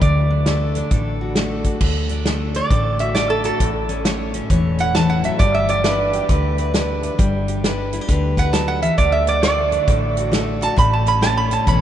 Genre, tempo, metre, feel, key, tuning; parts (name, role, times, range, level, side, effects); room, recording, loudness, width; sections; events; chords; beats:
honky-tonk and classic country; 134 BPM; 4/4; swing 64% on 8ths; D major; A4 = 440 Hz
lap resonator guitar; melody; 0.0-11.8 s; A4 to B5; -21 LUFS; right 3 dB
picked steel-string acoustic guitar; accompaniment; 0.0-11.8 s; A2 to C#5; -22 LUFS; left 2 dB
hollow-body short-scale fingered electric bass; bass; 0.0-11.8 s; E1 to D2; -22 LUFS; equal
natural country drum kit; drums; 0.0-11.8 s; crash cymbal, hi-hat, kick drum, snare drum; -22 LUFS; equal
moderate cathedral reverb, RT60 6.6 s; in a vast, echoing space, nothing above 10.4 kHz; -16 LUFS; side -10 dB against mid
0.0-1.8 A section; 1.8-11.8 B section
resonator guitar played with a steel bar solo 1.8-11.8
0.0 D; 3.6 A; 5.4 G; 9.0 D; 10.8 A
| 0.01 0.46 0.91 1.36 | 1.81 2.25 2.70 3.15 | 3.60 4.05 4.50 4.95 | 5.39 5.84 6.29 6.74 | 7.19 7.63 8.08 8.53 | 8.98 9.43 9.88 10.33 | 10.78 11.22 11.67